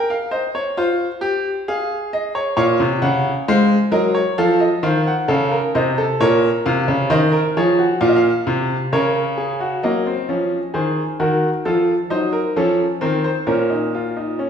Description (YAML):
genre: classical, baroque-style 3-part fugue for grand piano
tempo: 66 BPM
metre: 4/4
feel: straight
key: Bb minor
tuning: A4 = 440 Hz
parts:
  - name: clear grand piano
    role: solo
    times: 0.0-14.5 s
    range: Bb2 to Gb5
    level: -16 LUFS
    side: equal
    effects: none
room: wet recital hall reverb, RT60 1.5 s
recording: heard from further back in the room, faint mains hum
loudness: -16 LUFS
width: side -7 dB against mid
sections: 0.0-9.8 A section; 9.8-14.5 B section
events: none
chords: 0.0 Fm; 2.6 Bbm; 4.4 F7; 6.2 Bbm; 9.8 Ebm; 11.6 F7; 13.5 Bbm